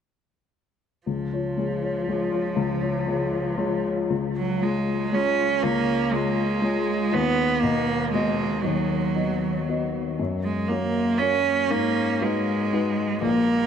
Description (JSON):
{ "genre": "neoclassical piano and strings", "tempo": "119 BPM", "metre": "3/4", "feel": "rubato", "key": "unclear", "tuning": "A4 = 441 Hz", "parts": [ { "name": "rich cello", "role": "second line", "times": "1.1-13.7 s", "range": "E#3 to C#4", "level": "-24 LUFS", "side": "right 4 dB", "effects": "tape echo" }, { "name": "dark grand piano", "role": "accompaniment", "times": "1.1-13.7 s", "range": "A#1 to D#5", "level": "-25 LUFS", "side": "left 4 dB", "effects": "tape echo" } ], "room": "moderate echo chamber reverb, RT60 2.4 s", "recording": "echo-heavy mix", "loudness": "-22 LUFS", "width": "side -8 dB against mid", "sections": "1.1-4.1 A section; 4.1-13.7 B section", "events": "none", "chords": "1.1 C#; 7.1 B/D#; 10.2 F#; 11.7 G#m7" }